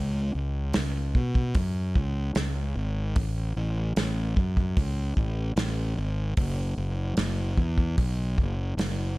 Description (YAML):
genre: rock, shoegaze and dream pop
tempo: 75 BPM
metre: 4/4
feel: straight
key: C# minor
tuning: A4 = 440 Hz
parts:
  - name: fuzz fingered electric bass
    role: bass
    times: 0.0-9.2 s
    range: F#1 to B2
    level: -27 LUFS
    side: equal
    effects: overdrive
  - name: loose indie drum kit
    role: drums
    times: 0.7-9.0 s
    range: hi-hat, kick drum, snare drum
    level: -27 LUFS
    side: equal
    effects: none
room: little or no reverb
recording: none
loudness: -25 LUFS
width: side -21 dB against mid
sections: 0.0-9.2 A section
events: none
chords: none